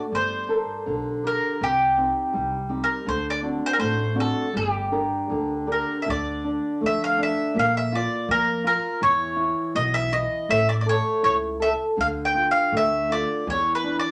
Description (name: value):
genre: fado-style ballad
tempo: 81 BPM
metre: 2/4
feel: rubato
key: G harmonic minor, D harmonic minor from 6.1 s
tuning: A4 = 440 Hz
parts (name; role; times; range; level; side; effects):
- nylon-string guitar; accompaniment; 0.0-14.1 s; C3 to Bb4; -29 LUFS; equal; none
- mandolin; melody; 0.1-14.1 s; G4 to G5; -25 LUFS; equal; none
- upright bass; bass; 0.1-13.9 s; G1 to F2; -34 LUFS; equal; none
room: wet small room reverb, RT60 0.5 s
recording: none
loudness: -24 LUFS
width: mono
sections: 0.0-6.1 A section; 6.1-14.1 B section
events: none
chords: 0.1 Gmadd9; 1.6 Cm; 3.1 D7; 4.6 Gm; 6.1 Dm; 7.6 Bb5; 9.0 E5; 10.5 A; 12.0 Dm; 13.5 E5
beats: | 0.13 0.88 | 1.62 2.35 | 3.08 3.81 | 4.55 5.30 | 6.07 6.82 | 7.56 8.28 | 9.01 9.74 | 10.49 11.23 | 11.98 12.73 | 13.48